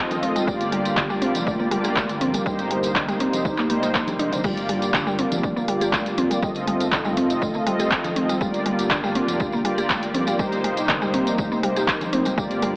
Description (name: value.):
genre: afro house.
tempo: 121 BPM.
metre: 4/4.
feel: straight.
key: G minor.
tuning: A4 = 439 Hz.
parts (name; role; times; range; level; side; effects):
warm analog pad; sustained chords; 0.0-12.8 s; C3 to F4; -28 LUFS; equal; chorus, sidechain pumping.
mellow synth brass; stabs; 0.0-12.8 s; Bb3 to Eb5; -26 LUFS; equal; chorus, sidechain pumping, dub echo.
deep house drum kit; drums; 0.1-12.7 s; crash cymbal, handclaps, hi-hat; -26 LUFS; equal; overdrive.
congas; percussion; 0.1-12.7 s; none; -32 LUFS; equal; none.
tambourine; percussion; 0.1-12.6 s; none; -36 LUFS; equal; none.
mallet-like synth pluck; arpeggios; 0.2-12.8 s; D3 to G4; -25 LUFS; equal; chorus, sidechain pumping, dub echo.
dark detuned saw bass; bass; 0.5-12.8 s; D1 to Bb1; -34 LUFS; equal; sidechain pumping.
electronic kick drum; drums; 0.5-12.5 s; none; -29 LUFS; equal; overdrive.
room: light reverb, digital ambience.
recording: AM radio sound.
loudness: -20 LUFS.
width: side -28 dB against mid.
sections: 0.0-12.8 A section.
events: none.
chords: 0.5 Gm7; 2.5 Cm7; 4.4 Gm7; 6.4 F7; 8.4 Gm7; 10.4 Cm7.